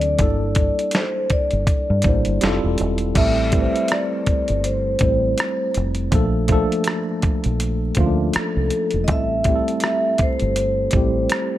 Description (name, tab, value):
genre	R&B, neo-soul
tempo	81 BPM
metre	4/4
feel	swing 57% on 16ths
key	unclear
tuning	A4 = 440 Hz
part	vibraphone with medium mallets	melody	0.0-11.6 s	A4 to E5	-22 LUFS	equal	none
part	tine electric piano	accompaniment	0.0-11.6 s	E3 to C5	-23 LUFS	equal	overdrive, fast stereo tremolo
part	deep dub fingered electric bass	bass	0.0-11.3 s	E1 to G2	-22 LUFS	equal	none
part	dusty soul sampler-style drum kit	drums	0.0-11.5 s	crash cymbal, hi-hat, kick drum, rim click, snare drum	-21 LUFS	equal	none
room	digital ambience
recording	vinyl crackle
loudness	-17 LUFS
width	side -14 dB against mid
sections	0.0-3.2 A section; 3.2-11.6 B section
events	none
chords	0.2 Gm69; 2.4 Fmaj9; 3.2 Am7; 6.1 Bbmaj7; 9.1 Am7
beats	| 0.19 0.93 1.67 2.41 | 3.15 3.90 4.64 5.38 | 6.12 6.86 7.60 8.34 | 9.08 9.82 10.56 11.30